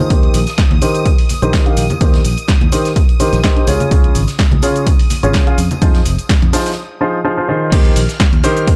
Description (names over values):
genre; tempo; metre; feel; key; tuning
piano house; 126 BPM; 4/4; swing 54% on 16ths; Eb mixolydian; A4 = 442 Hz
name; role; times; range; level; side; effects
string machine, violins; sustained chords; 0.0-8.8 s; Eb6 to F6; -31 LUFS; equal; ensemble chorus, sidechain pumping
clear baby grand piano; riff; 0.0-8.7 s; Db3 to F5; -19 LUFS; equal; sidechain pumping, low-pass filter, dub echo
huge arena drum kit; drums; 0.0-8.8 s; hi-hat, snare drum; -34 LUFS; equal; none
fingered electric bass; bass; 0.1-8.4 s; F1 to F2; -19 LUFS; equal; sidechain pumping
electronic kick drum; drums; 0.1-8.8 s; none; -15 LUFS; equal; none
punchy analog drum machine; drums; 0.1-8.8 s; cabasa, crash cymbal, hi-hat, snare drum; -24 LUFS; equal; none
tambourine and congas; percussion; 0.1-6.7 s; none; -27 LUFS; equal; none
room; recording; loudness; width
small room ambience; dark, warm production; -13 LUFS; mono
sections
0.0-7.7 A section; 7.7-8.8 B section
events
break 6.8-7.7; drop 7.7-8.8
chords
0.1 Eb6; 3.7 Db; 5.6 Fm7; 7.7 Eb6